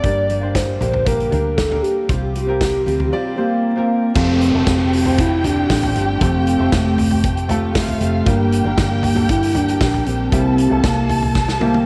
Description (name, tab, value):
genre	piano-driven pop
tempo	117 BPM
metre	4/4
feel	straight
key	F major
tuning	A4 = 438 Hz
part	hollow clarinet-like synth lead	melody	0.0-11.9 s	A3 to D5	-21 LUFS	equal	chorus, phaser
part	clear upright piano	accompaniment	0.0-11.9 s	G2 to D5	-29 LUFS	equal	none
part	fingerpicked steel-string acoustic guitar	riff	0.0-11.9 s	G2 to G4	-28 LUFS	equal	none
part	vintage muted fingered electric bass	bass	0.0-11.9 s	F1 to D2	-24 LUFS	equal	none
part	loose indie drum kit	drums	0.0-11.9 s	crash cymbal, hi-hat, kick drum, snare drum, toms	-24 LUFS	equal	none
part	dark studio violin section	second line	4.1-11.9 s	F4 to A5	-28 LUFS	equal	none
part	downlifter	sound effects	4.2-8.3 s	none	-32 LUFS	equal	none
room	light reverb, small room ambience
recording	none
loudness	-17 LUFS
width	mono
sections	0.0-4.2 A section; 4.2-11.9 B section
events	drum fill 11.4-11.9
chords	0.0 Gm; 2.1 Csus4; 4.2 Fadd9; 8.3 Gm; 10.3 C7